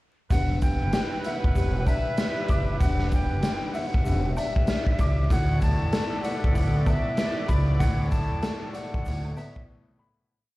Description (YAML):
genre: hip hop, boom-bap hip-hop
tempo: 96 BPM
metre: 4/4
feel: swing 63% on 16ths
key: B minor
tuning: A4 = 441 Hz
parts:
  - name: breathy jazz flute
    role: melody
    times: 0.3-9.7 s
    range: E5 to A5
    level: -33 LUFS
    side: left 1 dB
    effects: high-pass filter, low-pass filter, ping-pong delay
  - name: dark upright piano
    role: accompaniment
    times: 0.3-10.3 s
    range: G2 to D6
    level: -33 LUFS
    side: left 3 dB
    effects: high-pass filter, low-pass filter
  - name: clear saxophone section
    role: stabs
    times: 0.3-9.6 s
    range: G3 to D5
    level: -37 LUFS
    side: right 3 dB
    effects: high-pass filter, low-pass filter, ping-pong delay
  - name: upright bass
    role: bass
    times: 0.3-9.3 s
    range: E1 to E2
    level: -26 LUFS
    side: equal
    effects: none
  - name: raw garage drum kit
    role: drums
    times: 0.3-9.7 s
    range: hi-hat, kick drum, snare drum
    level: -25 LUFS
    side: equal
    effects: none
  - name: egg shaker and woodblock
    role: percussion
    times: 0.3-9.5 s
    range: none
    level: -46 LUFS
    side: right 1 dB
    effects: none
room: little or no reverb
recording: played on a big sound system in a bare room, large studio reverb, vinyl crackle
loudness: -22 LUFS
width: side -19 dB against mid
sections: 0.3-10.3 hook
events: fade-out 7.8-10.3; break 9.7-10.3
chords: 0.3 Em7; 5.3 Bm7